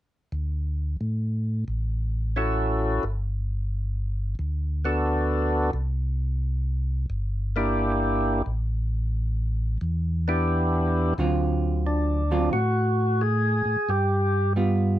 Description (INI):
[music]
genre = soul jazz organ trio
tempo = 88 BPM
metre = 4/4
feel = swing 67% on 8ths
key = D major, D mixolydian from 11.2 s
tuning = A4 = 440 Hz
[part]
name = mellow tonewheel organ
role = bass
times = 0.3-15.0 s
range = G1 to A2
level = -25 LUFS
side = equal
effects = slow rotary speaker
[part]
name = percussive tonewheel organ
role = melody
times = 2.4-14.5 s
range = Bb3 to A4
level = -24 LUFS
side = equal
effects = slow rotary speaker, overdrive
[part]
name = vintage hollow-body jazz guitar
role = accompaniment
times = 11.2-15.0 s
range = D3 to E#4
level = -25 LUFS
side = right 3 dB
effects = none
[sound]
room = light reverb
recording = none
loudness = -23 LUFS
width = side -13 dB against mid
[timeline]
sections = 0.3-11.2 A section; 11.2-15.0 B section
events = none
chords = 0.3 Dmaj7; 3.0 Gmaj9; 5.8 C7; 8.5 A7sus4; 11.2 D7#9; 13.9 G7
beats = | 0.33 1.01 1.69 2.37 | 3.04 3.72 4.40 5.07 | 5.75 6.43 7.11 7.79 | 8.46 9.14 9.82 10.50 | 11.18 11.86 12.53 13.21 | 13.89 14.57